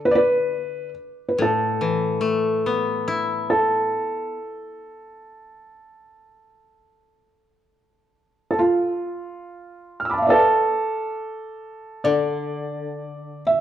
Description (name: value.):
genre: japanese traditional, Japanese chamber music.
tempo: 70 BPM.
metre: 4/4.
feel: uneven beats, rubato.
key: unclear.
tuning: A4 = 440 Hz.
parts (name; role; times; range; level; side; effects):
koto; accompaniment; 0.0-4.8, 12.0-13.6 s; A2 to E4; -24 LUFS; left 4 dB; none.
felt-muted upright piano; melody; 0.1-13.6 s; F4 to F6; -21 LUFS; right 1 dB; none.
room: moderate recital hall reverb, RT60 1.4 s.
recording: dark, warm production.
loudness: -20 LUFS.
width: side -11 dB against mid.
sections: 0.0-13.6 A section.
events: none.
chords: none.